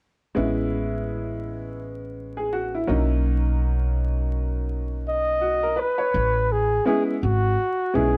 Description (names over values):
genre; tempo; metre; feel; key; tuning
hip hop, jazz-hop; 83 BPM; 4/4; swing 60% on 16ths; A major; A4 = 441 Hz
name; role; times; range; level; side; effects
clear upright piano; accompaniment; 0.3-8.2 s; F#3 to C#5; -29 LUFS; equal; none
upright bass; bass; 0.4-8.2 s; G#1 to B1; -27 LUFS; equal; none
mellow flugelhorn; melody; 5.1-8.2 s; F#4 to D#5; -24 LUFS; equal; none
room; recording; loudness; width
light reverb, small room ambience; vinyl crackle; -24 LUFS; mono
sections
0.4-6.1 A section; 6.1-8.2 B section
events
none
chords
0.4 Amaj9; 2.9 Bmaj9; 6.1 Amaj9